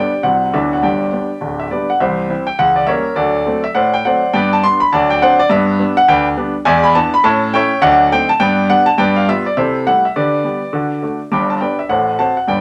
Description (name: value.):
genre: jazz, stride piano.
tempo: 206 BPM.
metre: 4/4.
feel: swing 62% on 8ths.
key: G major.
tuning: A4 = 440 Hz.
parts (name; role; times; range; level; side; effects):
clear grand piano; solo; 0.0-12.6 s; D1 to D6; -14 LUFS; equal; none.
room: moderate small room reverb, RT60 0.6 s.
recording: none.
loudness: -14 LUFS.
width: mono.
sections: 0.0-2.0 A section; 2.0-11.3 B section; 11.3-12.6 A section.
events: none.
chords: 0.3 C; 0.5 D69; 0.8 G; 2.0 C; 2.6 C#dim7; 3.2 D7; 4.3 G; 4.9 D7; 5.5 G; 6.7 E7; 7.2 A7; 7.8 D7b9; 8.4 G; 9.0 G7; 9.6 C6; 10.1 G/D; 10.7 D; 11.3 G; 11.9 F#dim/A.